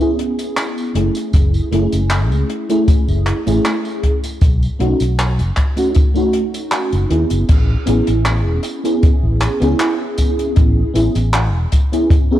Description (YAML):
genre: vaporwave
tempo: 78 BPM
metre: 4/4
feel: swing 53% on 16ths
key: A lydian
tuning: A4 = 440 Hz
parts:
  - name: FM electric piano with soft pad layer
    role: accompaniment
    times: 0.0-12.4 s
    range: A3 to G#4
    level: -18 LUFS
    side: equal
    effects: ensemble chorus, cassette tape, tape echo
  - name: open jazz drum kit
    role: drums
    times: 0.0-12.3 s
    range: crash cymbal, handclaps, hi-hat, tambourine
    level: -24 LUFS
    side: equal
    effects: none
  - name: fretless electric bass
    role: bass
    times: 0.9-11.7 s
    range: E1 to D#2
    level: -16 LUFS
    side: equal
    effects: tube saturation
  - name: kick drum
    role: drums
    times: 1.3-12.3 s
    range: none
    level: -14 LUFS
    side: equal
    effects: none
room: little or no reverb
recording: cassette tape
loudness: -13 LUFS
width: side -13 dB against mid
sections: 0.0-7.5 A section; 7.5-12.4 B section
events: none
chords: 0.0 Amaj7 (rootless); 1.0 F#m7; 4.0 B7; 7.5 Amaj7